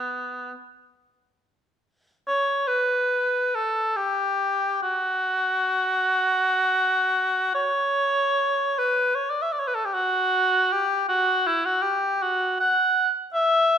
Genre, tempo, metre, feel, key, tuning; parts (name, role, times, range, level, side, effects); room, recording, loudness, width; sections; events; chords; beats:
classical, free, expressive piece for unaccompanied cor anglais; 29-54 BPM (dotted quarters); 6/8; rubato; A4 = 441 Hz
warm cor anglais; solo; 0.0-13.8 s; B3 to F#5; -21 LUFS; equal
moderate recital hall reverb, RT60 1.3 s; -21 LUFS; side -8 dB against mid
0.0-2.3 A section; 2.3-13.8 B section
0.55 | 2.27 3.56 | 4.82 6.07 | 7.55 8.79 | 9.96 11.09 | 12.22 13.34